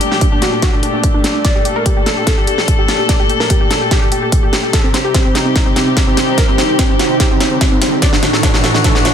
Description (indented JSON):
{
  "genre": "heavy wobble dubstep",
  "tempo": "146 BPM",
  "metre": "4/4",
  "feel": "half-time",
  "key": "G harmonic minor",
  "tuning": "A4 = 440 Hz",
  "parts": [
    { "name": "wide unison pluck", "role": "melody", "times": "0.0-9.1 s", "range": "C4 to D5", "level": "-19 LUFS", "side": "equal", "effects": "tape echo" },
    { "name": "dark chamber string section", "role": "sustained chords", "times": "0.0-9.1 s", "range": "A2 to A4", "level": "-18 LUFS", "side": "left 2 dB", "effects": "sidechain pumping" },
    { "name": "big-room dance drum kit", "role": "drums", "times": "0.0-9.1 s", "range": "hi-hat, snare drum", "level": "-18 LUFS", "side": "equal", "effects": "high-pass filter on snare, studio reverb, high-pass filter on hats" },
    { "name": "deep dark ambient pad", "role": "texture", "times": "0.0-9.1 s", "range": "D4 to A5", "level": "-23 LUFS", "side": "right 2 dB", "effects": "chorus, built-in reverb, sidechain pumping" },
    { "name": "electronic kick drum", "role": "drums", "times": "0.2-8.9 s", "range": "none", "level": "-14 LUFS", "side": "equal", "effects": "studio reverb" },
    { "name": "riser", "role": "sound effects", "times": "6.0-9.1 s", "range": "none", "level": "-24 LUFS", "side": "right 1 dB", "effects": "none" }
  ],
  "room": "light reverb",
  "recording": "dense, heavily limited modern master",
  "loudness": "-11 LUFS",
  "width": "side -8 dB against mid",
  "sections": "0.0-9.1 A section",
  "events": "build-up 0.0-9.1; drum fill 0.0-9.1; riser 6.0-9.1",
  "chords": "0.0 Gmadd9; 4.7 Cm; 8.0 D"
}